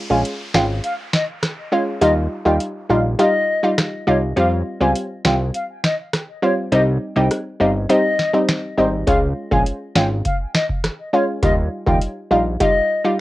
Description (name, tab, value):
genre	dancehall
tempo	102 BPM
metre	4/4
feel	straight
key	unclear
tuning	A4 = 440 Hz
part	analog pluck	accompaniment	0.0-13.2 s	G3 to F4	-18 LUFS	equal	chorus
part	downlifter	sound effects	0.0-4.4 s	none	-38 LUFS	equal	none
part	mellow silver concert flute	melody	0.1-13.0 s	C5 to Ab5	-22 LUFS	left 2 dB	tape echo
part	fat analog bass	bass	0.1-12.6 s	G1 to F2	-21 LUFS	equal	none
part	booming analog drum machine	drums	0.3-12.8 s	finger snaps, hi-hat, kick drum, rim click, snare drum	-20 LUFS	equal	none
room	light reverb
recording	home recording on cassette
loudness	-16 LUFS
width	side -16 dB against mid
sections	0.0-13.2 A section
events	break 0.0-9.1; kick muted 6.7-9.1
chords	0.0 Db; 2.0 Ebadd9; 4.4 Fsus2; 6.7 Cm; 9.1 Db; 11.4 Ebadd9